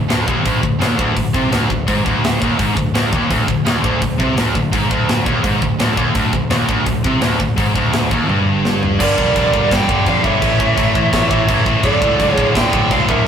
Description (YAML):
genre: heavy metal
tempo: 168 BPM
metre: 4/4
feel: straight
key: unclear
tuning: A4 = 439 Hz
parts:
  - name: heavy high-gain guitar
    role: riff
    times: 0.0-13.3 s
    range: D2 to A3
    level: -20 LUFS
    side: right 6 dB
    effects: distortion
  - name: scooped high-gain guitar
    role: riff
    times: 0.0-13.3 s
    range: D2 to A3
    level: -18 LUFS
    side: left 5 dB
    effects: distortion
  - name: picked electric bass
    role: bass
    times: 0.0-13.3 s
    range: D1 to A2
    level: -22 LUFS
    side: equal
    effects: none
  - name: tight metal drum kit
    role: drums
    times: 0.1-13.2 s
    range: crash cymbal, hi-hat, kick drum, snare drum, toms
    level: -19 LUFS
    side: equal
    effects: none
  - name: lead guitar through a small cranked amp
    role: melody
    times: 9.0-13.3 s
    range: D5 to G5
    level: -18 LUFS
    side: right 2 dB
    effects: overdrive
  - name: bluesy overdriven lead guitar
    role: second line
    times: 9.0-13.3 s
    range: A4 to D5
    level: -24 LUFS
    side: right 6 dB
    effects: distortion, digital delay
room: moderate stone room reverb, RT60 1.0 s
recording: rough rehearsal-room recording, warm saturation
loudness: -13 LUFS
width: side -8 dB against mid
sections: 0.0-9.0 A section; 9.0-13.3 B section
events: drum fill 8.3-9.0; half time 9.0-13.3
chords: 0.0 G#maj7#11/D; 9.0 Gm; 10.4 A; 11.8 D5